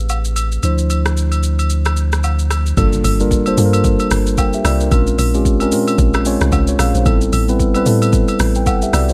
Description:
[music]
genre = amapiano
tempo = 112 BPM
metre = 4/4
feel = swing 58% on 16ths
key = G dorian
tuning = A4 = 444 Hz
[part]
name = mellow tine electric piano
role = accompaniment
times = 0.0-9.1 s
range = F3 to G5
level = -20 LUFS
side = equal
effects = none
[part]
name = punchy sub bass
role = bass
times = 0.0-2.7 s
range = A1 to D2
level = -18 LUFS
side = equal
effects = none
[part]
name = afro-pop drum kit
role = drums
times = 0.1-9.1 s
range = hi-hat, kick drum, rim click, shaker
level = -22 LUFS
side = equal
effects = none
[part]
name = agogo bells and woodblock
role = percussion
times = 0.1-9.1 s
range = none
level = -28 LUFS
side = equal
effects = none
[part]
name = deep log drum bass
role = bass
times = 2.8-9.1 s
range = G1 to Bb2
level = -19 LUFS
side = equal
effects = none
[part]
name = impact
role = sound effects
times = 2.8-4.9 s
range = none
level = -31 LUFS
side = equal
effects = none
[sound]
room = digital ambience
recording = none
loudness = -15 LUFS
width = mono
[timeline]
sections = 0.0-2.8 A section; 2.8-9.1 B section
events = drop 2.8-9.1; impact 2.8-4.9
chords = 0.0 Am9; 0.6 Dm9; 2.8 Gm9; 4.9 Bbm9; 7.1 Am9

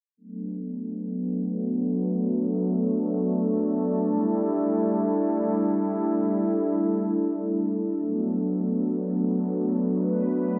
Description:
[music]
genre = hip hop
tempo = free time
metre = none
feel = none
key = B minor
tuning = A4 = 440 Hz
[part]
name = warm analog pad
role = solo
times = 0.2-10.6 s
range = F#3 to B4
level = -26 LUFS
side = equal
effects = chorus, low-pass filter, analog delay
[sound]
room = light reverb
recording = nothing above 10.3 kHz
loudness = -26 LUFS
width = mono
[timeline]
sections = 0.2-10.6 A section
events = filter sweep on analog synth pad 0.2-10.6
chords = 0.2 Bm7; 4.1 A7sus4; 8.0 Bm7

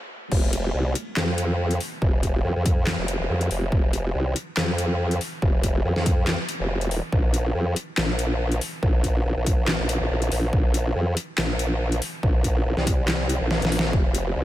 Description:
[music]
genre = heavy wobble dubstep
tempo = 141 BPM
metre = 4/4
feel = swing 54% on 16ths, half-time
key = unclear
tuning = A4 = 440 Hz
[part]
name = formant-sweep wobble bass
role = bass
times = 0.3-14.4 s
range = F1 to F2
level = -23 LUFS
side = equal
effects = chorus, overdrive
[part]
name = dubstep drum kit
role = drums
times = 0.3-14.2 s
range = crash cymbal, handclaps, hi-hat, snare drum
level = -28 LUFS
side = left 1 dB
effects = overdrive
[part]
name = electronic kick drum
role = drums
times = 0.3-14.0 s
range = none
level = -22 LUFS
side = equal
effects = none
[sound]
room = light reverb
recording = high-pass filter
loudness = -21 LUFS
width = side -14 dB against mid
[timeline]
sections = 0.3-14.4 A section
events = stop 0.0-0.3; drop 0.3-14.4; drum fill 13.5-13.9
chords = none

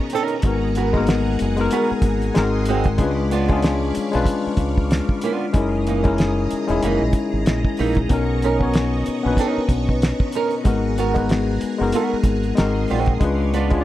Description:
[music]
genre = R&B, neo-soul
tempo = 94 BPM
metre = 4/4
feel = swing 57% on 16ths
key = G# minor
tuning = A4 = 440 Hz
[part]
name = barky tine electric piano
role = accompaniment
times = 0.0-13.8 s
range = G#3 to C#5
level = -21 LUFS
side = left 4 dB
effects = none
[part]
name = string machine, full ensemble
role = sustained chords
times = 0.0-13.8 s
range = B3 to D#6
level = -31 LUFS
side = right 1 dB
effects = phaser, ensemble chorus
[part]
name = flamenco guitar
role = second line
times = 0.1-13.8 s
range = E3 to A#4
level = -25 LUFS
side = right 6 dB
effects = none
[part]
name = cloth-damped thuddy drum kit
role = drums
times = 0.1-13.8 s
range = hi-hat, kick drum, snare drum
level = -20 LUFS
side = equal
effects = none
[part]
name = deep dub fingered electric bass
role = bass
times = 0.4-13.8 s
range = E1 to C#2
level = -23 LUFS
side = equal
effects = none
[sound]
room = studio ambience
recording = dark, warm production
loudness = -17 LUFS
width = side -14 dB against mid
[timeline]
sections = 0.0-13.8 A section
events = none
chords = 0.4 G#m9; 2.4 G#7; 3.0 C#7b9; 5.5 F#13; 8.1 Bmaj9; 10.7 G#m9; 12.6 G#7; 13.2 C#7b9

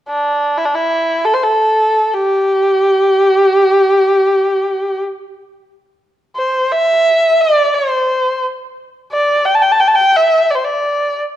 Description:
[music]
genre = chinese traditional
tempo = free time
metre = none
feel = none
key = G zhi mode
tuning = A4 = 439 Hz
[part]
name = warm erhu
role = melody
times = 0.1-11.2 s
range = D4 to A5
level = -12 LUFS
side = equal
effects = none
[sound]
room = moderate scoring stage reverb, RT60 1.5 s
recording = dark, warm production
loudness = -11 LUFS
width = side -12 dB against mid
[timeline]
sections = 0.0-6.4 A section; 6.4-11.4 B section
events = none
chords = none

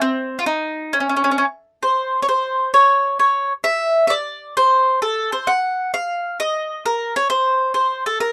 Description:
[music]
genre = italian folk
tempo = 131 BPM (dotted quarters)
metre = 6/8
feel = straight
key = unclear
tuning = A4 = 440 Hz
[part]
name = mandolin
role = solo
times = 0.0-8.3 s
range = C4 to Gb5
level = -19 LUFS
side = equal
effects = none
[sound]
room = light reverb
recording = dry, close 1970s-style studio recording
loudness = -19 LUFS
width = mono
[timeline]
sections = 0.0-1.8 A section; 1.8-8.3 B section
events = none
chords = none

